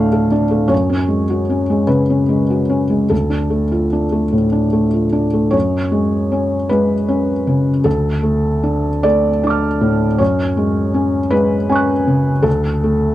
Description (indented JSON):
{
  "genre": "neoclassical minimalist piano",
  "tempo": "48-54 BPM (dotted quarters)",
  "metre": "6/8",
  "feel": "rubato",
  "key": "F# harmonic minor",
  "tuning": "A4 = 439 Hz",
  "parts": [
    { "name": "felt-muted upright piano", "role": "solo", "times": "0.0-13.1 s", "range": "D2 to F#6", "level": "-14 LUFS", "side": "equal", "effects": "none" }
  ],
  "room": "moderate booth ambience, RT60 0.3 s",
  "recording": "dry, close 1970s-style studio recording",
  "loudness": "-14 LUFS",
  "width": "side -14 dB against mid",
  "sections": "0.0-5.5 A section; 5.5-13.1 B section",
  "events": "none",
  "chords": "0.0 Dm; 0.7 F#sus2; 3.1 Dm; 5.5 F#sus2; 7.9 Dm; 10.2 F#sus2; 12.5 D5"
}